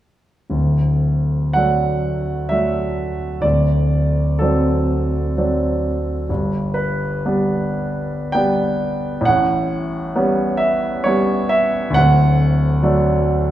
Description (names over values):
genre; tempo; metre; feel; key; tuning
classical, romantic nocturne for solo piano; 52-70 BPM; 3/4; rubato; D major; A4 = 440 Hz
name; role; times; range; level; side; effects
warm grand piano; solo; 0.5-13.5 s; D1 to G5; -16 LUFS; equal; none
room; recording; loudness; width
wet recital hall reverb, RT60 1.6 s; small room ambience; -16 LUFS; side -12 dB against mid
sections
0.6-13.5 A section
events
none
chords
0.6 D; 3.4 D7; 6.3 G; 9.3 A9; 12.0 D